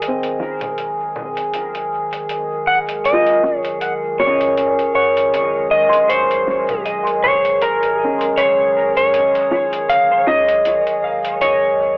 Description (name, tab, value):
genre	ambient dub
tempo	79 BPM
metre	4/4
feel	swing 56% on 16ths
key	Eb dorian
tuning	A4 = 439 Hz
part	warbly tape-like pad	sustained chords	0.0-12.0 s	Eb3 to Bb4	-26 LUFS	equal	chorus, built-in reverb, plate reverb
part	electronic hi-hat and congas	drums	0.0-11.6 s	none	-30 LUFS	equal	overdrive, cassette tape, dub echo
part	drifting glass-harmonics texture	texture	0.0-12.0 s	Ab4	-23 LUFS	right 1 dB	chorus, built-in reverb
part	felt-muted upright piano	arpeggios	0.1-12.0 s	C4 to C6	-26 LUFS	equal	low-pass filter, dub echo, plate reverb
part	filtered dub chord stab	stabs	0.4-10.4 s	Gb3 to Gb4	-29 LUFS	equal	chorus, dub echo
part	electric slide guitar	melody	2.7-12.0 s	Bb4 to Gb5	-15 LUFS	equal	cassette tape, dub echo
room	moderate small room reverb, RT60 0.5 s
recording	home recording on cassette, telephone sound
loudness	-14 LUFS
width	side -29 dB against mid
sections	0.0-12.0 A section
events	filter sweep on synth stab 0.0-12.0; filter sweep on felt piano 0.0-12.0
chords	0.0 Ebm9